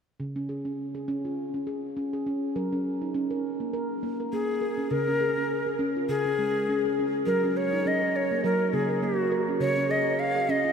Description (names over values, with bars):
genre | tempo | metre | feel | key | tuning
world meditative, meditative tuned percussion | 102 BPM | 4/4 | swing 55% on 16ths | Db major | A4 = 442 Hz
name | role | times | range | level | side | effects
handpan | arpeggios | 0.2-10.7 s | Db3 to Bb4 | -28 LUFS | right 1 dB | none
breathy Native American-style cedar flute | melody | 4.3-10.7 s | Gb4 to F5 | -25 LUFS | left 1 dB | analog delay
room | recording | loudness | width
wet huge ambient reverb, RT60 7.1 s | dreamy mix soaked in reverb | -25 LUFS | side -6 dB against mid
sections
0.2-4.9 A section; 4.9-10.7 B section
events
none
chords
0.2 Db; 2.6 Gb; 4.9 Db; 7.3 Gb; 9.6 Db